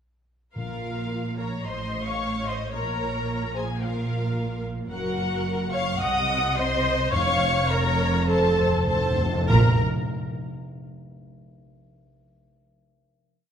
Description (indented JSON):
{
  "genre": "classical, dramatic, fast romantic movement for symphony orchestra",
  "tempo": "96-112 BPM",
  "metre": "4/4",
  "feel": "rubato",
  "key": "Bb minor",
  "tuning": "A4 = 440 Hz",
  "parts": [
    { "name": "rich studio violin section", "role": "melody", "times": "0.6-9.8 s", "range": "F5 to Eb6", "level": "-30 LUFS", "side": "left 4 dB", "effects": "none" },
    { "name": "rich symphonic violin section", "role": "second line", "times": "0.6-9.8 s", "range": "Bb4 to Gb5", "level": "-29 LUFS", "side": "equal", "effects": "none" },
    { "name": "warm symphonic viola section", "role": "accompaniment", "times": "0.6-9.8 s", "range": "F4 to Eb5", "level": "-30 LUFS", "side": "right 1 dB", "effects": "none" },
    { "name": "rich symphonic double bass section", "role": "bass", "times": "0.6-9.8 s", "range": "F1 to C2", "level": "-29 LUFS", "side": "right 2 dB", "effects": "none" },
    { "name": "warm symphonic cello section", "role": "bass", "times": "0.6-9.8 s", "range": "F2 to C3", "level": "-29 LUFS", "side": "right 2 dB", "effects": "none" },
    { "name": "timpani", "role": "percussion", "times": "0.6-1.3, 7.1-9.8 s", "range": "F2 to Bb2", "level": "-28 LUFS", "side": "left 1 dB", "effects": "none" }
  ],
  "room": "wet scoring stage reverb, RT60 1.8 s",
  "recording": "minimal, uncompressed stereo recording, faint mains hum",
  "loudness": "-22 LUFS",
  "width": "side -8 dB against mid",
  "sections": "0.6-9.5 A section; 9.5-11.8 final note",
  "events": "slowing down 3.8-9.5; timpani fill 8.3-9.5",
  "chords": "0.6 Bb5; 1.7 F7b13/A; 2.8 Bbm; 4.9 Gb; 6.0 Cdim; 7.1 Bbm/F; 9.5 N.C."
}